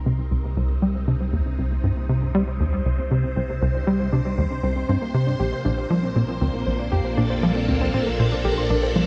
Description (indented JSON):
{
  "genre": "ambient, sequencer-driven space music",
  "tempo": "118 BPM",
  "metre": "4/4",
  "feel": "straight",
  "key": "C dorian",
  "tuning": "A4 = 441 Hz",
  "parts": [
    { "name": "phased string machine", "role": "sustained chords", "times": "0.0-9.1 s", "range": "Bb2 to C5", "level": "-30 LUFS", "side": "equal", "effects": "ensemble chorus, phaser" },
    { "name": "warm sub bass", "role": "bass", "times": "0.0-9.1 s", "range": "Bb1 to C2", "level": "-31 LUFS", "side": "equal", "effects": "none" },
    { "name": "warbly dusty pluck", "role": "arpeggios", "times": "0.1-9.0 s", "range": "G3 to C5", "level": "-32 LUFS", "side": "equal", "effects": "chorus, analog delay" },
    { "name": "tight sequencer bass", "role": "riff", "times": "0.1-9.1 s", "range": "Bb1 to G3", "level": "-25 LUFS", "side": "equal", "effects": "subtle chorus, analog delay" }
  ],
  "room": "moderate lush hall reverb, RT60 3.0 s",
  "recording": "none",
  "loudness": "-23 LUFS",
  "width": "mono",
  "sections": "0.0-9.1 A section",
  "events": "fade-in on synth arpeggio sound 0.0-9.1; fade-in on string machine 0.0-9.1",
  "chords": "0.0 Cm7; 5.4 Bbmaj7"
}